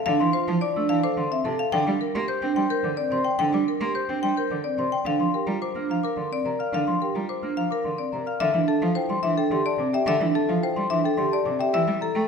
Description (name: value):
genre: classical, minimalist pattern music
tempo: 108 BPM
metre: 3/4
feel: straight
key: D minor from 8.4 s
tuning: A4 = 440 Hz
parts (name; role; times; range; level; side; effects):
- marimba with hard mallets; melody; 0.0-12.2 s; A4 to G5; -26 LUFS; left 8 dB; none
- rich cello; accompaniment; 0.1-12.3 s; C3 to C4; -29 LUFS; right 3 dB; none
- vibraphone with soft mallets; arpeggios; 0.1-12.3 s; C4 to C5; -27 LUFS; right 7 dB; none
- large celesta; arpeggios; 0.2-12.3 s; E5 to G6; -30 LUFS; left 3 dB; none
room: moderate scoring stage reverb, RT60 1.7 s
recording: minimal, uncompressed stereo recording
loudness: -22 LUFS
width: side -6 dB against mid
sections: 0.0-8.4 A section; 8.4-12.3 B section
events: none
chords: 0.0 Dm7; 1.7 Gm; 5.1 C7sus4; 8.4 Dm9; 11.7 A7(no3)